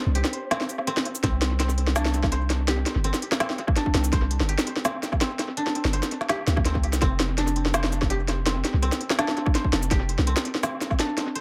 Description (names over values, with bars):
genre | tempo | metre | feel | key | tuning
half-time drum and bass | 166 BPM | 4/4 | half-time | unclear | A4 = 442 Hz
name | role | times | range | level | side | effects
koto | arpeggios | 0.0-11.4 s | C4 to C5 | -33 LUFS | equal | analog delay
flickering grainy texture | texture | 0.0-1.2 s | C4 to C5 | -43 LUFS | equal | none
long sustained 808-style bass | bass | 0.1-10.4 s | F1 to D2 | -27 LUFS | equal | none
organic electronic drum kit | drums | 0.2-11.4 s | hi-hat, shaker, snare drum | -28 LUFS | equal | analog delay
electronic kick drum | drums | 1.2-11.0 s | none | -27 LUFS | equal | none
room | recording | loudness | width
light reverb, digital ambience | echo-heavy mix | -24 LUFS | mono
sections
0.0-1.2 A section; 1.2-11.4 A section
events
drop 0.0-1.2, 1.2-11.4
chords
0.0 N.C.; 1.2 C5; 7.0 F5